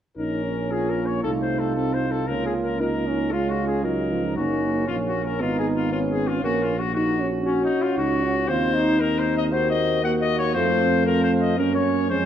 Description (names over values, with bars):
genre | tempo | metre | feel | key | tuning
classical, brass quintet | 116 BPM | 4/4 | rubato | Bb minor | A4 = 441 Hz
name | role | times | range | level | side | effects
clear trumpet | melody | 0.2-12.3 s | Db4 to Gb5 | -26 LUFS | left 6 dB | none
warm flugelhorn | second line | 0.2-12.3 s | Db4 to Gb4 | -28 LUFS | right 6 dB | none
mellow French horn | accompaniment | 0.2-12.3 s | A3 to Gb4 | -26 LUFS | left 2 dB | none
warm euphonium | accompaniment | 0.2-12.3 s | F3 to Eb4 | -28 LUFS | right 2 dB | none
mellow tuba | bass | 0.2-12.3 s | Gb1 to Gb2 | -27 LUFS | right 3 dB | none
room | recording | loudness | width
moderate scoring stage reverb, RT60 2.1 s | dark, warm production | -20 LUFS | side -10 dB against mid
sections
0.2-12.3 A section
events
none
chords
0.2 Bbm; 1.2 F7/C; 2.3 Bbm/Db; 4.4 Gb; 5.4 Db5/Ab; 6.4 Gb/Bb; 8.5 Cdim/Eb; 10.6 F; 11.6 Gb